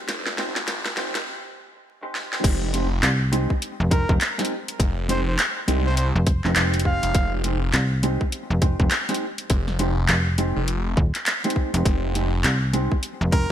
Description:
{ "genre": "glitch hop", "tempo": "102 BPM", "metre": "4/4", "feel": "swing 61% on 16ths", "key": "F minor", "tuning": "A4 = 440 Hz", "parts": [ { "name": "phased detuned saw bass", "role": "bass", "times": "0.1-12.4 s", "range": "F1 to C2", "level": "-24 LUFS", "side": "equal", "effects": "phaser, overdrive, high-pass filter" }, { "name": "drum and bass drum kit", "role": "drums", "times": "0.1-13.5 s", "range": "crash cymbal, handclaps, hi-hat, snare drum", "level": "-25 LUFS", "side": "equal", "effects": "overdrive, gated reverb" }, { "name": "mellow electric guitar", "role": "stabs", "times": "0.4-13.5 s", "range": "Ab3 to G4", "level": "-28 LUFS", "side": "right 1 dB", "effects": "vintage 12-bit sampler grit, sidechain pumping, ping-pong delay" }, { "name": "electronic kick drum", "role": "drums", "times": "2.4-13.5 s", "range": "none", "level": "-21 LUFS", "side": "equal", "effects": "overdrive" }, { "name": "slap-like FM bass", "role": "bass", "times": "3.0-13.5 s", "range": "Eb1 to C2", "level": "-21 LUFS", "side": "equal", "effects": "none" }, { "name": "clear trumpet", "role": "melody", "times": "3.9-7.3, 13.3-13.5 s", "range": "Bb4 to F5", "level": "-30 LUFS", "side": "equal", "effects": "ping-pong delay" } ], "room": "light reverb", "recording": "bright 1980s-style digital production, vinyl crackle, high-pass filter", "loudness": "-20 LUFS", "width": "side -10 dB against mid", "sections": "0.0-2.4 A section; 2.4-13.5 B section", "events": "build-up 0.0-2.4; drum fill 0.0-1.3, 2.1; break 1.3-2.4; drop 2.4-13.5", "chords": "0.0 Fm9" }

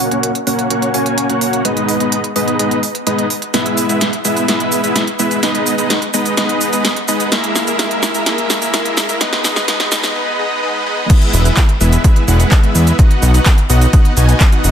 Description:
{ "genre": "EDM, festival progressive house", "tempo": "127 BPM", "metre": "4/4", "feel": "straight", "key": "B major", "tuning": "A4 = 440 Hz", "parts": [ { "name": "dense compressed supersaw", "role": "riff", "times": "0.0-14.7 s", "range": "G#3 to G#5", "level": "-16 LUFS", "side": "equal", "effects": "sidechain pumping, low-pass filter, dub echo" }, { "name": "big-room dance drum kit", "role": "drums", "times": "0.0-14.7 s", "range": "cabasa, crash cymbal, handclaps, hi-hat, snare drum", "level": "-18 LUFS", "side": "right 1 dB", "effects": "none" }, { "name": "electronic kick drum", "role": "drums", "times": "11.1-14.5 s", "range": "none", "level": "-10 LUFS", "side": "equal", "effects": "none" }, { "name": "fat analog bass", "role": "bass", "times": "11.3-14.7 s", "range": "E1 to E2", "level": "-10 LUFS", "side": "equal", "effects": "sidechain pumping" } ], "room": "light reverb, digital ambience", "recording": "dense, heavily limited modern master, high-pass filter", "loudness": "-12 LUFS", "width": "side -8 dB against mid", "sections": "0.0-11.1 A section; 11.1-14.7 B section", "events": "build-up 0.0-11.1; filter sweep on supersaw synth 0.0-11.1; filter sweep 0.0-11.1; drum fill 3.5-10.2; break 10.2-11.1; drop 11.1-14.7", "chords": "0.0 F#; 1.6 G#m; 3.5 E; 5.4 B; 7.3 G#sus2; 9.2 G#m; 11.1 E; 13.0 B" }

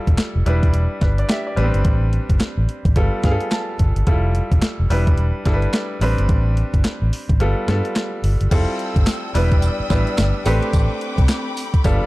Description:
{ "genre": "R&B, new jack swing", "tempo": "108 BPM", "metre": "4/4", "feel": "swing 62% on 16ths", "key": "A minor", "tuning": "A4 = 440 Hz", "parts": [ { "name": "bright concert grand piano", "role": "accompaniment", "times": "0.0-12.1 s", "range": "G3 to A5", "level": "-24 LUFS", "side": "equal", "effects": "none" }, { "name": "vintage muted fingered electric bass", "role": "bass", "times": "0.1-12.0 s", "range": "E1 to G2", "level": "-18 LUFS", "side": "equal", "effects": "none" }, { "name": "crisp 8-bit digital drum machine", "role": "drums", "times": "0.1-12.0 s", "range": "crash cymbal, handclaps, hi-hat, kick drum, snare drum, tambourine", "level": "-19 LUFS", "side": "equal", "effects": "none" }, { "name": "warm studio string section", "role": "sustained chords", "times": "8.5-12.1 s", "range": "C4 to E6", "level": "-29 LUFS", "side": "left 2 dB", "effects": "none" } ], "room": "digital ambience", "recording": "dark, warm production", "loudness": "-16 LUFS", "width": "side -20 dB against mid", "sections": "0.0-8.5 A section; 8.5-12.1 B section", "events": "grand piano fill 3.0-4.1; kick muted 7.4-8.5", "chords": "0.5 Em7; 1.6 Am11; 3.0 G9; 4.1 Fmaj9; 4.9 Em7; 6.0 Am11; 7.4 G9; 8.5 Fmaj9; 9.3 Em7; 10.5 Am11" }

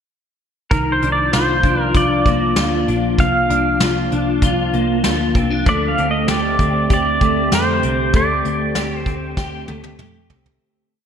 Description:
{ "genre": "dream pop", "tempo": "97 BPM", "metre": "4/4", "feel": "straight", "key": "unclear", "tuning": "A4 = 440 Hz", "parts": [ { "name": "pedal steel guitar", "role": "melody", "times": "0.7-9.3 s", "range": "Bb4 to F5", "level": "-20 LUFS", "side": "right 1 dB", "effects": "analog chorus, ping-pong delay" }, { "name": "warbly tape-like pad", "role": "sustained chords", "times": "0.7-10.6 s", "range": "D3 to G4", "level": "-24 LUFS", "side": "equal", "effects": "chorus, built-in reverb" }, { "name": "clean electric guitar", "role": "arpeggios", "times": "0.7-11.1 s", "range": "Eb3 to G4", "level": "-21 LUFS", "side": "left 2 dB", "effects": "ensemble chorus, ping-pong delay" }, { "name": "vintage muted picked electric bass", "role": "bass", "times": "0.7-10.6 s", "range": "Bb1 to F2", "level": "-23 LUFS", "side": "equal", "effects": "none" }, { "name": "soft brush drum kit", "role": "drums", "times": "0.7-10.6 s", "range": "hi-hat, kick drum, snare drum, toms", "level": "-20 LUFS", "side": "equal", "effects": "gated reverb" } ], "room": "moderate lush hall reverb, RT60 2.0 s", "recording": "bright 1980s-style digital production", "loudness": "-15 LUFS", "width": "side -7 dB against mid", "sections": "0.7-10.6 verse", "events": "fade-out 8.1-10.6; drum fill 9.4-10.6", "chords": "0.7 Cm11; 5.7 D7sus4" }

